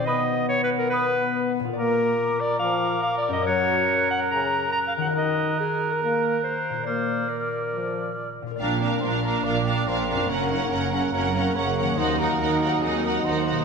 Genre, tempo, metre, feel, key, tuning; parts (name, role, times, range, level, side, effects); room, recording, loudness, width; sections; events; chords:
cinematic; 142 BPM; 4/4; straight; A4 = 440 Hz
clear clarinet; second line; 0.0-13.6 s; Bb3 to Bb5; -27 LUFS; equal
warm French horn section; sustained chords; 0.0-13.6 s; Db3 to Eb4; -29 LUFS; left 3 dB
concert harp; arpeggios; 0.0-13.6 s; Gb2 to Db6; -32 LUFS; left 8 dB
mellow cor anglais; second line; 0.1-13.6 s; Ab4 to D5; -30 LUFS; right 5 dB
mellow hollow concert flute; second line; 0.1-13.6 s; Eb5 to Gb6; -32 LUFS; equal
dark symphonic violin section; melody; 8.6-13.6 s; F5 to Gb5; -30 LUFS; left 1 dB
warm symphonic violin section; second line; 8.6-13.6 s; Bb4; -32 LUFS; left 3 dB
clear symphonic viola section; accompaniment; 8.6-13.6 s; Db4 to Eb4; -29 LUFS; right 4 dB
warm symphonic cello section; bass; 8.6-13.6 s; Eb2 to Bb2; -30 LUFS; right 4 dB
warm symphonic double bass section; bass; 8.6-13.6 s; Gb1 to Eb2; -30 LUFS; right 7 dB
wet scoring stage reverb, RT60 2.1 s; -21 LUFS; side -5 dB against mid
0.0-8.6 A section; 8.6-13.6 B section
0.1 B; 1.8 Bb; 3.5 Gb; 5.2 Ebm; 6.9 Bb; 10.3 Gb; 12.0 Ebm